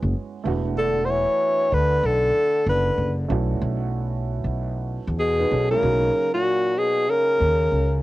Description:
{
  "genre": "hip hop",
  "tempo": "95 BPM",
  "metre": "4/4",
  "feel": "swing 63% on 16ths",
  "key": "unclear",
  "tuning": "A4 = 439 Hz",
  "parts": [
    { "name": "dark upright piano", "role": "accompaniment", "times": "0.0-8.0 s", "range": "F#3 to B4", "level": "-31 LUFS", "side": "right 7 dB", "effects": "cassette tape" },
    { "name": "upright bass", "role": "bass", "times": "0.0-8.0 s", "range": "E1 to E2", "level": "-24 LUFS", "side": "equal", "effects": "none" },
    { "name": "breathy alto saxophone", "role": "melody", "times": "0.8-8.0 s", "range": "F#4 to C#5", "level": "-20 LUFS", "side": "equal", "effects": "none" },
    { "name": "bright trombone", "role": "second line", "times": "0.8-8.0 s", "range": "A#2 to E3", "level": "-29 LUFS", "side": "left 6 dB", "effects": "cassette tape, tape echo" }
  ],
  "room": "light reverb",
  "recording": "home recording on cassette",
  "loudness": "-19 LUFS",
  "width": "side -17 dB against mid",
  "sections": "0.0-5.8 A section; 5.8-8.0 B section",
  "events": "none",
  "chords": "0.5 E9sus4; 3.3 B9sus4; 5.8 Bmaj9 (rootless)",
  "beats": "0.14 | 0.77 1.40 2.03 2.66 | 3.29 3.93 4.56 5.19 | 5.82 6.45 7.08 7.72"
}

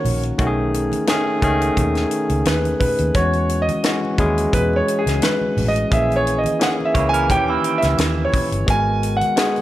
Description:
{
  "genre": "lush 1970s-style soul",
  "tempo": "87 BPM",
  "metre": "4/4",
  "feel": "swing 54% on 16ths",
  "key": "B major",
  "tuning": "A4 = 439 Hz",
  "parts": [
    { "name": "warm grand piano", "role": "melody", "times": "0.0-9.6 s", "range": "G#4 to G#5", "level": "-21 LUFS", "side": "right 1 dB", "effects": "slapback echo" },
    { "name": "barky tine electric piano", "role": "accompaniment", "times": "0.0-9.6 s", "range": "D#3 to A#4", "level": "-21 LUFS", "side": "left 1 dB", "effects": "none" },
    { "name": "vintage muted fingered electric bass", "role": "bass", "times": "0.0-9.2 s", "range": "G1 to E2", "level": "-22 LUFS", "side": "equal", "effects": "none" },
    { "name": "congas", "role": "percussion", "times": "0.0-9.6 s", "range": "none", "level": "-31 LUFS", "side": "right 4 dB", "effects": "none" },
    { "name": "tight funk drum kit", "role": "drums", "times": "0.1-9.6 s", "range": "hi-hat, kick drum, snare drum", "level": "-22 LUFS", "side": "equal", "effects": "none" },
    { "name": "electric guitar through a small old amp", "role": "riff", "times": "6.9-8.5 s", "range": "A#3 to C#5", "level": "-24 LUFS", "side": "right 8 dB", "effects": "spring reverb" }
  ],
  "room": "light reverb, studio reverb",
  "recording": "none",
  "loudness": "-16 LUFS",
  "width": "side -14 dB against mid",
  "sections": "0.0-9.6 A section",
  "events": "grand piano solo 0.0-9.6",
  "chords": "0.4 B13; 3.2 E69; 5.9 A#m7b5; 7.3 D#7b9; 8.7 G#m9",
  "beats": "| 0.39 1.08 1.77 2.47 | 3.16 3.85 4.54 5.23 | 5.92 6.61 7.30 7.99 | 8.68 9.37"
}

